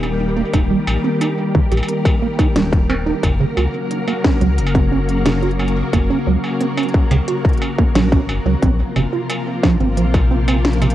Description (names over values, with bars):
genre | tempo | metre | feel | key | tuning
IDM | 89 BPM | 4/4 | straight | unclear | A4 = 440 Hz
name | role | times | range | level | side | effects
soft string machine | sustained chords | 0.0-10.9 s | C3 to Bb4 | -21 LUFS | left 1 dB | ensemble chorus, cassette tape
rubbery square bass | bass | 0.0-10.9 s | Eb1 to Db2 | -19 LUFS | left 1 dB | none
industrial drum kit | drums | 0.0-10.9 s | hi-hat, snare drum, struck metal | -24 LUFS | left 1 dB | cassette tape, tape echo
deep acid bass | arpeggios | 0.4-10.9 s | C3 to G4 | -21 LUFS | right 5 dB | cassette tape, tape echo
electronic kick drum | drums | 0.5-10.3 s | none | -16 LUFS | left 1 dB | distortion, cassette tape
room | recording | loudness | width
light reverb | home recording on cassette | -14 LUFS | side -13 dB against mid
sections
0.0-10.9 A section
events
none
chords
0.0 Eb; 3.2 Gb; 8.6 Bbsus2